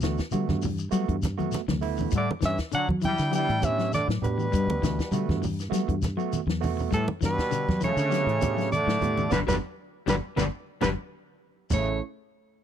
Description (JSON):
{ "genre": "afrobeat", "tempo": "100 BPM", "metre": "4/4", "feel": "swing 53% on 16ths", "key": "A mixolydian", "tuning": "A4 = 435 Hz", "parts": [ { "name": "overdriven tine electric piano", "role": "accompaniment", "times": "0.0-12.0 s", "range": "G3 to G4", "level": "-33 LUFS", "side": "right 15 dB", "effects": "none" }, { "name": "clean electric guitar", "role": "arpeggios", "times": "0.0-11.9 s", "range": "A2 to G3", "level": "-32 LUFS", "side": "left 12 dB", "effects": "none" }, { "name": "fingered electric bass", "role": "bass", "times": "0.0-12.0 s", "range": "G1 to G3", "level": "-29 LUFS", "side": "equal", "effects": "none" }, { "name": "compact cocktail drum kit", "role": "drums", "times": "0.0-11.9 s", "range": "crash cymbal, hi-hat, kick drum, snare drum", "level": "-31 LUFS", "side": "equal", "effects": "none" }, { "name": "shekere", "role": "percussion", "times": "0.0-11.9 s", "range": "none", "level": "-37 LUFS", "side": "left 7 dB", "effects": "none" }, { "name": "congas", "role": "percussion", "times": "0.3-11.9 s", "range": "none", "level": "-32 LUFS", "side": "right 4 dB", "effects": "none" }, { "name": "brilliant trombone section", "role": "second line", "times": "2.1-12.0 s", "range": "G2 to G3", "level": "-35 LUFS", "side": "right 2 dB", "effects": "none" }, { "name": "bright alto saxophone", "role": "melody", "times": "2.2-12.0 s", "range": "A4 to G5", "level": "-28 LUFS", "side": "right 1 dB", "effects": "none" }, { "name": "bright trombone", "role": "second line", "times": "2.2-12.0 s", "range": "E3 to E4", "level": "-36 LUFS", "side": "right 3 dB", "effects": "none" } ], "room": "studio reverb", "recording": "dry, close 1970s-style studio recording", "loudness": "-24 LUFS", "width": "side -9 dB against mid", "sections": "0.0-11.7 A section", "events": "drum fill 1.4-2.1, 11.0-11.7; band accent 9.3-11.7; tine electric piano fill 9.9-11.7", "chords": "0.0 Gmaj7; 2.1 A7sus4; 4.5 Gmaj7; 6.9 A7sus4; 9.3 Gmaj7; 11.7 A" }